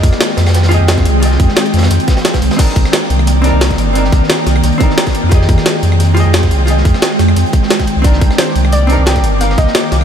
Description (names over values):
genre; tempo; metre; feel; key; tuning
liquid drum and bass; 176 BPM; 4/4; swing 54% on 16ths; C minor; A4 = 441 Hz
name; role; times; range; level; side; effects
hollow-body jazz guitar; accompaniment; 0.0-10.0 s; Bb3 to Eb5; -19 LUFS; equal; lush chorus, ping-pong delay
ethereal airy pad; sustained chords; 0.0-10.0 s; Eb3 to D6; -16 LUFS; right 1 dB; ensemble chorus, built-in reverb
warm sub bass; bass; 0.0-10.0 s; G1 to F2; -12 LUFS; equal; tube saturation
crunchy breakbeat drum kit; drums; 0.0-10.0 s; hi-hat, snare drum; -24 LUFS; equal; high-pass filter on hats, small room ambience, high-pass filter on snare, high-pass filter on room
electronic kick drum; drums; 0.0-9.7 s; none; -12 LUFS; equal; small room ambience
jungle sampler-style drum kit; drums; 0.0-10.0 s; crash cymbal, hi-hat, rim click, snare drum; -17 LUFS; equal; small room ambience
soft round pluck; melody; 8.4-10.0 s; C5 to G5; -19 LUFS; left 1 dB; chorus, analog delay
room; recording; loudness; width
light reverb; none; -9 LUFS; side -8 dB against mid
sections
0.0-10.0 A section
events
none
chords
0.0 Fm9; 2.6 Cm9; 5.3 Fm9; 8.0 Cm9